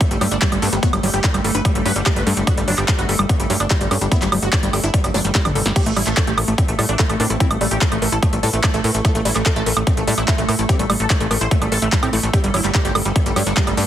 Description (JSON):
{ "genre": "psychedelic trance", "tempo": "146 BPM", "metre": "4/4", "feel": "straight", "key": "unclear", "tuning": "A4 = 440 Hz", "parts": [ { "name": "evolving wavetable pad", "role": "sustained chords", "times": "0.0-13.9 s", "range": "A3 to A4", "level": "-27 LUFS", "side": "right 2 dB", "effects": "chorus, built-in reverb, sidechain pumping" }, { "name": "woody wave-folded pluck", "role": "riff", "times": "0.0-13.9 s", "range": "F#3 to Bb4", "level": "-26 LUFS", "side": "moving between left 4 dB and right 4 dB", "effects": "chorus, auto-pan, sidechain pumping, digital delay" }, { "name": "big-room dance drum kit", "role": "drums", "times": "0.0-13.9 s", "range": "crash cymbal, handclaps, hi-hat, snare drum, toms, woodblock", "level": "-22 LUFS", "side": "equal", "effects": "none" }, { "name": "electronic kick drum", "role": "drums", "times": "0.0-13.7 s", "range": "none", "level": "-18 LUFS", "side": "equal", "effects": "none" }, { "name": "supersaw stab", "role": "melody", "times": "0.1-13.8 s", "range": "G3 to C5", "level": "-25 LUFS", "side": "equal", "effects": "phaser, sidechain pumping, digital delay" }, { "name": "tight sequencer bass", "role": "bass", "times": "0.1-13.8 s", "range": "G1 to A2", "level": "-21 LUFS", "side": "equal", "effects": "none" }, { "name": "formant-sweep wobble bass", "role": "second line", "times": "0.6-2.8, 7.2-9.4, 13.8-13.9 s", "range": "E3 to D4", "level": "-35 LUFS", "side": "left 3 dB", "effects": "none" } ], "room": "little or no reverb", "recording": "heavily compressed radio sound, multiband compression", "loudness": "-15 LUFS", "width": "side -11 dB against mid", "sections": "0.0-13.9 A section", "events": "drum fill 5.1-5.8", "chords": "0.0 G5; 5.8 A5; 12.3 G5", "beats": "0.01 0.42 | 0.83 1.24 1.65 2.06 | 2.47 2.88 3.29 3.71 | 4.12 4.53 4.94 5.35 | 5.76 6.17 6.58 6.99 | 7.40 7.81 8.22 8.64 | 9.05 9.46 9.87 10.28 | 10.69 11.10 11.51 11.92 | 12.34 12.75 13.16 13.57" }